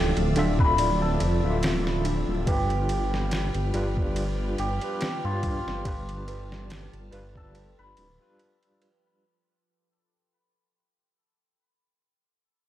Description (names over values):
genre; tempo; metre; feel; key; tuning
trip hop; 71 BPM; 4/4; swing 55% on 16ths; unclear; A4 = 440 Hz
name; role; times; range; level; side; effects
cimbalom; melody; 0.0-10.5 s; F4 to B4; -31 LUFS; left 3 dB; dub echo
overdriven tine electric piano; accompaniment; 0.0-9.3 s; D3 to E5; -33 LUFS; equal; fast tremolo, vintage 12-bit sampler grit, tape echo
string machine, cellos; sustained chords; 0.0-9.2 s; F4 to F6; -38 LUFS; equal; phaser, ensemble chorus
celesta; arpeggios; 0.0-9.3 s; D4 to D5; -35 LUFS; right 5 dB; tape echo
dark detuned saw bass; bass; 0.0-8.2 s; D1 to G2; -28 LUFS; equal; none
bowed-like drone; texture; 0.0-9.3 s; F3 to F4; -36 LUFS; equal; none
trip hop sampler-style drum kit; drums; 0.2-9.0 s; kick drum, ride cymbal, snare drum; -30 LUFS; equal; none
room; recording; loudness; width
light reverb, digital ambience; vinyl crackle; -23 LUFS; side -12 dB against mid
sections
0.0-9.2 A section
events
fade-out 0.2-9.2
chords
0.0 Dmadd9; 2.5 G7